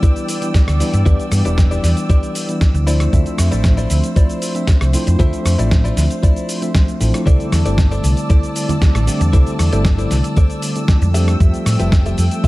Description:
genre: nu-disco, nu disco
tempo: 116 BPM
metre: 4/4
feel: straight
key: C major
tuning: A4 = 440 Hz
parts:
  - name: tine electric piano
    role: accompaniment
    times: 0.0-12.5 s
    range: D3 to E5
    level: -21 LUFS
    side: left 1 dB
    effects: medium tremolo, sidechain pumping, analog delay
  - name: muted studio string section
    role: sustained chords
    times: 0.0-12.5 s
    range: A4 to E6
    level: -29 LUFS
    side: right 2 dB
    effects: sidechain pumping
  - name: direct-recorded clean electric guitar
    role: riff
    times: 0.0-12.5 s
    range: E4 to E5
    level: -27 LUFS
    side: left 2 dB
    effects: lush chorus, analog delay
  - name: dusty soul sampler-style drum kit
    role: drums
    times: 0.0-12.5 s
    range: cabasa, hi-hat, rim click, snare drum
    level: -24 LUFS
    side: equal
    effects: none
  - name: electronic kick drum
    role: drums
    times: 0.0-12.5 s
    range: none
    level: -13 LUFS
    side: equal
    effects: none
  - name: hollow-body short-scale fingered electric bass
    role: bass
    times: 0.7-12.3 s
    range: E1 to A2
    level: -15 LUFS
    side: equal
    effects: none
  - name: congas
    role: percussion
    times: 8.7-11.1 s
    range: none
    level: -26 LUFS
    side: right 4 dB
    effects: none
room: digital ambience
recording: none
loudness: -13 LUFS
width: side -19 dB against mid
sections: 0.0-12.5 A section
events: none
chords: 0.0 Em7; 2.9 Dm9; 7.3 C69; 11.1 Fmaj9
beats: 0.03 0.54 | 1.06 1.58 2.09 2.61 | 3.13 3.65 4.16 4.68 | 5.20 5.71 6.23 6.75 | 7.27 7.78 8.30 8.82 | 9.34 9.85 10.37 10.89 | 11.40 11.92 12.44

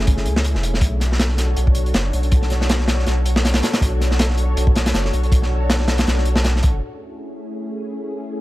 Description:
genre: drum and bass, jungle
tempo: 160 BPM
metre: 4/4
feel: swing 55% on 16ths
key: unclear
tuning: A4 = 441 Hz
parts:
  - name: soft string machine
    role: sustained chords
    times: 0.0-8.4 s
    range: A3 to C#5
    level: -26 LUFS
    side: left 1 dB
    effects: ensemble chorus
  - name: saturated sub bass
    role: bass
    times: 0.0-6.8 s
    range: E1 to C#2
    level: -19 LUFS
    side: equal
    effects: none
  - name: crunchy breakbeat drum kit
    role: drums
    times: 0.1-6.7 s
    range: hi-hat, kick drum, snare drum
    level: -19 LUFS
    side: equal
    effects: none
room: small room reverb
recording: none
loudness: -16 LUFS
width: side -17 dB against mid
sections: 0.0-6.8 A section; 6.8-8.4 B section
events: filter sweep on string machine 6.8-8.4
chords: 0.0 F#m9; 0.8 Bm9; 6.8 Amaj7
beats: 0.07 0.44 | 0.82 1.19 1.57 1.94 | 2.32 2.69 3.07 3.44 | 3.82 4.19 4.57 4.94 | 5.32 5.69 6.07 6.44 | 6.82 7.19 7.57 7.94 | 8.32

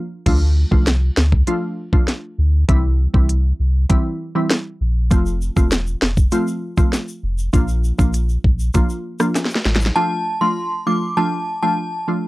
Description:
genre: dancehall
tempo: 99 BPM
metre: 4/4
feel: straight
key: D minor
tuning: A4 = 439 Hz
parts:
  - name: glassy wavetable pluck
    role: accompaniment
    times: 0.3-12.3 s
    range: E3 to F4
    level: -22 LUFS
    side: equal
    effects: chorus
  - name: warm sub bass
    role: bass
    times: 0.3-9.9 s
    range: E1 to D2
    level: -17 LUFS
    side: equal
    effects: none
  - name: island pop drum kit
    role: drums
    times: 0.3-10.0 s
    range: crash cymbal, hi-hat, kick drum, rim click, snare drum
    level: -16 LUFS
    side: equal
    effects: none
  - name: tube shaker and timbales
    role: percussion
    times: 5.1-9.9 s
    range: none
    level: -32 LUFS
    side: left 1 dB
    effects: none
  - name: synth chime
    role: melody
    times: 10.0-11.7 s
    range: A5 to D6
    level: -20 LUFS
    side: equal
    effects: ensemble chorus
room: little or no reverb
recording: dry, gritty hardware recording, cassette tape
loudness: -16 LUFS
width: side -19 dB against mid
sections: 0.3-10.0 A section; 10.0-12.3 B section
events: break 0.0; drum fill 9.4-10.0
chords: 0.3 Dm; 2.7 C; 5.1 F; 7.5 Bb; 10.0 Dm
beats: | 0.26 0.87 1.48 2.08 | 2.69 3.29 3.90 4.51 | 5.11 5.72 6.32 6.93 | 7.54 8.14 8.75 9.35 | 9.96 10.57 11.17 11.78

